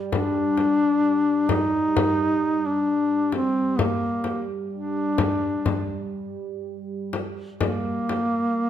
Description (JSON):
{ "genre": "caucasian folk, Caucasian lament", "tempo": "60-66 BPM", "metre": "4/4", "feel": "rubato", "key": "G minor", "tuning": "A4 = 440 Hz", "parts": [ { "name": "deep dark ambient pad", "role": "drone", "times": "0.0-8.7 s", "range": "G3", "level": "-32 LUFS", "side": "right 5 dB", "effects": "chorus, built-in reverb" }, { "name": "mellow duduk", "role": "melody", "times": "0.1-8.7 s", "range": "Bb3 to Eb4", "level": "-22 LUFS", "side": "left 1 dB", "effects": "none" }, { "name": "frame drum", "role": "percussion", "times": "0.1-8.3 s", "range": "none", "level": "-26 LUFS", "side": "left 4 dB", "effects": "none" } ], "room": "moderate recital hall reverb, RT60 1.4 s", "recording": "none", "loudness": "-21 LUFS", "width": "side -10 dB against mid", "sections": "0.0-8.7 A section", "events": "none", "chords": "none", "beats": "| 0.13 1.05 1.97 2.88 | 3.79 4.72 5.67 6.64 | 7.62 8.60" }